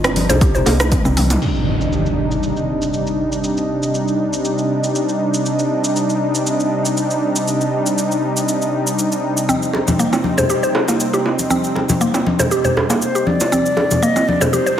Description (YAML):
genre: afro house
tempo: 119 BPM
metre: 4/4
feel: swing 54% on 16ths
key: C minor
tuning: A4 = 440 Hz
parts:
  - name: warm analog pad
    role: sustained chords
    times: 0.0-14.8 s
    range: C3 to Eb4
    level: -19 LUFS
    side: equal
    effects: chorus, sidechain pumping
  - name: mallet-like synth pluck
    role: arpeggios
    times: 0.0-1.3, 9.5-14.7 s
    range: Bb3 to C5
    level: -19 LUFS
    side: equal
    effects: chorus, sidechain pumping, digital delay
  - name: woody FM bass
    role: bass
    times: 0.0-1.4 s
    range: G1 to C2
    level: -19 LUFS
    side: equal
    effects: tube saturation, sidechain pumping
  - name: deep house drum kit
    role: drums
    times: 0.0-14.8 s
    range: crash cymbal, hi-hat, rim click, shaker, toms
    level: -23 LUFS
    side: equal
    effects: overdrive, low-pass filter on snare, studio reverb, low-pass filter on hats, low-pass filter on perc, low-pass filter on toms, low-pass filter on cymbals
  - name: bongos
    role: percussion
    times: 0.0-1.4, 9.7-14.5 s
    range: none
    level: -23 LUFS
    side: right 3 dB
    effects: none
  - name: congas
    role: percussion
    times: 0.1-1.4, 9.5-14.6 s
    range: none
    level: -21 LUFS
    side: left 2 dB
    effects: none
  - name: electronic kick drum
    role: drums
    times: 0.4-1.0 s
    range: none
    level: -18 LUFS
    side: equal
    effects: overdrive, studio reverb
  - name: impact and riser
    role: sound effects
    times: 1.4-3.4, 14.2-14.8 s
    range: none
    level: -23 LUFS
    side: equal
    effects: none
  - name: mellow hollow jazz flute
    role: melody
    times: 13.0-14.8 s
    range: C5 to Eb5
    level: -19 LUFS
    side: left 2 dB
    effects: digital delay
room: moderate plate reverb, RT60 1.9 s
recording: heavily compressed radio sound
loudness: -15 LUFS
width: side -9 dB against mid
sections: 0.0-1.4 A section; 1.4-14.8 B section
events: drum fill 0.4-1.4; impact 1.4-3.4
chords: 0.0 Cmadd9